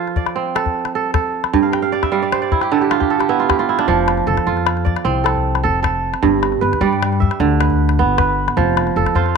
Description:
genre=west african traditional, West African string and xylophone music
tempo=102 BPM (dotted quarters)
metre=12/8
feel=straight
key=F lydian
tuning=A4 = 440 Hz
part: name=kora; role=arpeggios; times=0.0-9.4 s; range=G2 to G5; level=-16 LUFS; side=right 7 dB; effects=none
part: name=calabash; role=percussion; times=0.1-9.3 s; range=none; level=-21 LUFS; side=left 8 dB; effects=none
part: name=upright bass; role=bass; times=3.9-9.4 s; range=F1 to G2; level=-19 LUFS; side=left 3 dB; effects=none
room=moderate echo chamber reverb, RT60 1.6 s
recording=1960s-style stereo with parts hard left and right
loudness=-14 LUFS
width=side -5 dB against mid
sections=0.0-9.4 A section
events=kora fill 1.6-3.9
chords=0.0 F; 1.5 G; 3.9 F; 6.2 G; 8.6 F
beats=0.36 0.94 | 1.53 2.12 2.71 3.29 | 3.88 4.47 5.05 5.64 | 6.23 6.81 7.40 7.99 | 8.57 9.16

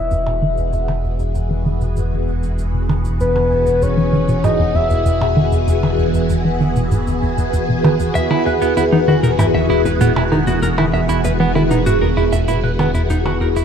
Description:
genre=ambient, sequencer-driven space music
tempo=97 BPM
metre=4/4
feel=straight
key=E major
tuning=A4 = 438 Hz
part: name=soft octave-layered synth lead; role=melody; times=0.0-5.4 s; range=B4 to E5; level=-21 LUFS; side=left 2 dB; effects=chorus, ping-pong delay
part: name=phased string machine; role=sustained chords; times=0.0-13.6 s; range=E3 to G#4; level=-19 LUFS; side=equal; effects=ensemble chorus, phaser
part: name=hollow square pluck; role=riff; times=0.0-13.6 s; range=E2 to E3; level=-19 LUFS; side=equal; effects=chorus, ping-pong delay
part: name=fat analog bass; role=bass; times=0.0-13.6 s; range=E1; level=-21 LUFS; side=equal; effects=none
part: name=shaker and percussion blips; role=percussion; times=0.1-13.6 s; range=none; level=-31 LUFS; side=right 3 dB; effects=ping-pong delay
part: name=semi-hollow electric guitar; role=arpeggios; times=8.2-13.6 s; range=B3 to E5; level=-21 LUFS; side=right 2 dB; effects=auto-pan, ping-pong delay
room=moderate plate reverb, RT60 2.6 s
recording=dark, warm production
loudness=-14 LUFS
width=side -8 dB against mid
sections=0.0-13.6 A section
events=fade-in on string machine 0.0-13.6; fade-in on drum 0.0-13.6; filter sweep on synth arpeggio sound 0.0-13.6; fade-out 11.5-13.6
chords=0.0 Eadd9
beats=0.11 | 0.73 1.35 1.97 2.59 | 3.21 3.82 4.44 5.06 | 5.68 6.30 6.92 7.54 | 8.15 8.77 9.39 10.01 | 10.63 11.25 11.87 12.48 | 13.10

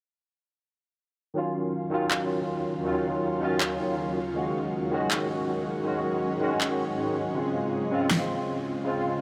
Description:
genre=future bass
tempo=160 BPM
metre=4/4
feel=swing 56% on 16ths, half-time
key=unclear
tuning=A4 = 440 Hz
part: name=barky tine electric piano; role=accompaniment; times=1.3-9.2 s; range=Db3 to Gb4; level=-29 LUFS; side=equal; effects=ensemble chorus, digital delay
part: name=shimmering ambient pad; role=sustained chords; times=2.3-9.2 s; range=Eb2 to F4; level=-37 LUFS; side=equal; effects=chorus, built-in reverb
part: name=electronic handclaps and snare drum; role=drums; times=2.1-8.2 s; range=none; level=-34 LUFS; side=equal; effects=overdrive
room=moderate shimmer reverb, RT60 6.0 s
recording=none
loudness=-28 LUFS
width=mono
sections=1.4-9.2 A section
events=none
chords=1.4 Ebm9; 4.2 Ab7sus4; 7.4 Dbmaj7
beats=| 1.36 1.73 2.11 2.48 | 2.86 3.23 3.61 3.98 | 4.36 4.73 5.11 5.48 | 5.86 6.23 6.61 6.98 | 7.36 7.73 8.11 8.48 | 8.86

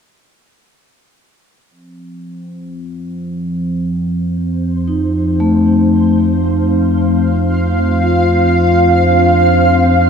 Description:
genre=ambient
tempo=57 BPM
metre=4/4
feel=straight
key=F mixolydian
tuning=A4 = 439 Hz
part: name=deep rumbling drone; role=bass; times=3.5-10.1 s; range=F2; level=-18 LUFS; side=equal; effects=built-in reverb
part: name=analog drone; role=drone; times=1.9-10.1 s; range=F3 to C4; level=-19 LUFS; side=equal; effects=chorus
part: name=granular cloud pad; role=sustained chords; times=5.5-10.1 s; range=C5 to F5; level=-16 LUFS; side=right 1 dB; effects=built-in reverb
part: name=vibraphone with soft mallets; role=arpeggios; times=4.9-10.1 s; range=A3 to F4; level=-14 LUFS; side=left 2 dB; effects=diffuse ambient delay
room=wet huge ambient reverb, RT60 8.5 s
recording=dark, warm production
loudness=-11 LUFS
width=side -6 dB against mid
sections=1.7-10.1 A section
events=none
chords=1.7 F5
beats=| 1.71 2.76 3.81 4.86 | 5.92 6.97 8.02 9.07

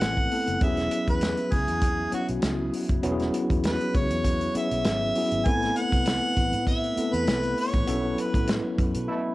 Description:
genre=lush 1970s-style soul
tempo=99 BPM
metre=4/4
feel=swing 54% on 16ths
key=E major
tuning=A4 = 439 Hz
part: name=mellow harmonica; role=melody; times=0.0-8.5 s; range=F#4 to G#5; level=-28 LUFS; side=equal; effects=tape echo
part: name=mellow tine electric piano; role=accompaniment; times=0.0-9.3 s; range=F#3 to B4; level=-27 LUFS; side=left 1 dB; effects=medium stereo tremolo, cassette tape
part: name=mellow French horn section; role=sustained chords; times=0.0-9.3 s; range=C3 to B4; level=-41 LUFS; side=equal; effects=none
part: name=vintage muted fingered electric bass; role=bass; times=0.0-9.1 s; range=E1 to B2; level=-32 LUFS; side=equal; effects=none
part: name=warm soul drum kit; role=drums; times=0.0-9.1 s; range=hi-hat, kick drum, snare drum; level=-27 LUFS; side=equal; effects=none
part: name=bright trombone section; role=stabs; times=9.1-9.3 s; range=B2 to E4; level=-29 LUFS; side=right 2 dB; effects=cassette tape
room=light reverb, small room ambience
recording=home recording on cassette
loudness=-23 LUFS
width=side -18 dB against mid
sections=0.0-9.3 A section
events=harmonica solo 0.0-9.3; band accent 7.9-9.3; break 9.1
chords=0.0 Amadd9; 0.6 E6; 5.5 Amadd9; 7.9 B7sus4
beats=0.01 | 0.62 1.22 1.83 2.43 | 3.04 3.64 4.25 4.86 | 5.46 6.07 6.67 7.28 | 7.88 8.49 9.09

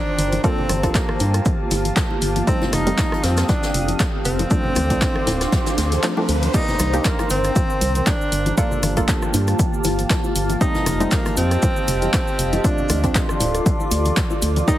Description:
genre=deep house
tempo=118 BPM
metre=4/4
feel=swing 55% on 16ths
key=unclear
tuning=A4 = 440 Hz
part: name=clear tenor saxophone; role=melody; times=0.0-14.8 s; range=Bb3 to Eb4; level=-26 LUFS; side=right 1 dB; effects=tape echo
part: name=dark analog pad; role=sustained chords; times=0.0-14.8 s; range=G4 to Eb6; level=-28 LUFS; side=right 1 dB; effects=chorus, phaser, sidechain pumping
part: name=filtered dub chord stab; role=stabs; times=0.0-14.8 s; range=Eb3 to D5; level=-26 LUFS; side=equal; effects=chorus, sidechain pumping, tape echo
part: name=granular cloud pad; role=texture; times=0.0-14.8 s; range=Eb3 to D6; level=-28 LUFS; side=equal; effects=built-in reverb, sidechain pumping
part: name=organ-like FM bass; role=bass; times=0.2-14.6 s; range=D1 to G2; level=-21 LUFS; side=equal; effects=sidechain pumping
part: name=punchy analog drum machine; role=drums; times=0.2-14.8 s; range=crash cymbal, handclaps, hi-hat, rim click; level=-26 LUFS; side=left 1 dB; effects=overdrive
part: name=soft brush drum kit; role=drums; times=0.2-14.8 s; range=hi-hat, shaker, snare drum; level=-33 LUFS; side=equal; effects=none
part: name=congas and bongos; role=percussion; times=0.3-14.7 s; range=none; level=-29 LUFS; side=left 3 dB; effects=none
part: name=electronic kick drum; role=drums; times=0.4-14.8 s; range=none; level=-21 LUFS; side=equal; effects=overdrive
part: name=riser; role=sound effects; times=4.1-6.5 s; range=none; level=-32 LUFS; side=right 1 dB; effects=none
part: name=cabasa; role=percussion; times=6.5-14.8 s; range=none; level=-32 LUFS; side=right 2 dB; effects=none
room=light reverb, studio reverb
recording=heavily compressed radio sound, multiband compression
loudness=-17 LUFS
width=side -13 dB against mid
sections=0.0-6.5 A section; 6.5-14.8 B section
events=riser 4.1-6.5; kick drops out 6.0-6.5; drop 6.5-14.8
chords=0.2 Gm9; 2.5 F9; 4.5 Dm7; 6.5 Cm7; 8.3 Gm9; 10.6 F9; 12.6 Dm7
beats=| 0.44 0.95 1.46 1.97 | 2.47 2.98 3.49 4.00 | 4.51 5.02 5.53 6.03 | 6.54 7.05 7.56 8.07 | 8.58 9.08 9.59 10.10 | 10.61 11.12 11.63 12.13 | 12.64 13.15 13.66 14.17 | 14.68

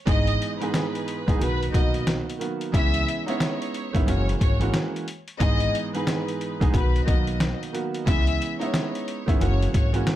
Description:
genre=hip hop, boom-bap hip-hop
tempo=90 BPM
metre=4/4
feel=swing 61% on 16ths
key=C# dorian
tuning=A4 = 438 Hz
part: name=clear studio violin section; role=melody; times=0.1-10.0 s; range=B4 to E5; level=-30 LUFS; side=left 3 dB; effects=high-pass filter, low-pass filter, ping-pong delay
part: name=clear upright piano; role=accompaniment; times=0.1-10.2 s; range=G#2 to G#4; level=-28 LUFS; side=right 3 dB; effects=high-pass filter, low-pass filter
part: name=upright bass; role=bass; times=0.1-10.0 s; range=F#1 to C#2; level=-26 LUFS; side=equal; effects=none
part: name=trip hop sampler-style drum kit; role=drums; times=0.1-10.2 s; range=hi-hat, kick drum, snare drum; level=-24 LUFS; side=equal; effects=overdrive
room=light reverb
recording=none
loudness=-22 LUFS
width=side -13 dB against mid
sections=0.0-10.2 A section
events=none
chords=0.1 Emaj7/G#; 1.4 Bmaj7; 2.7 C#m9; 4.1 F#9; 5.4 Emaj7/G#; 6.7 Bmaj7; 8.1 C#m9; 9.4 F#9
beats=| 0.07 0.74 1.40 2.07 | 2.74 3.40 4.07 4.74 | 5.40 6.07 6.74 7.40 | 8.07 8.74 9.40 10.07

